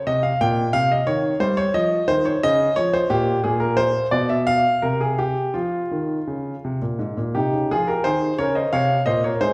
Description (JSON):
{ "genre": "classical, baroque-style suite movement for grand piano", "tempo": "82-90 BPM", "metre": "3/4", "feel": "rubato", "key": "F minor", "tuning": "A4 = 440 Hz", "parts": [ { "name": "warm grand piano", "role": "solo", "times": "0.1-9.5 s", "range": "Ab2 to G5", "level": "-21 LUFS", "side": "equal", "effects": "none" } ], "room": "wet recital hall reverb, RT60 1.6 s", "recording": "recorded in a church or concert hall", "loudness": "-21 LUFS", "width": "mono", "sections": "0.0-7.7 A section; 7.7-9.5 A section", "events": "none", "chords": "0.0 Bb5; 0.7 Cmadd11; 1.4 Dbmaj9#11; 2.8 Bbm69; 3.4 N.C.; 5.5 F5; 7.7 Fm" }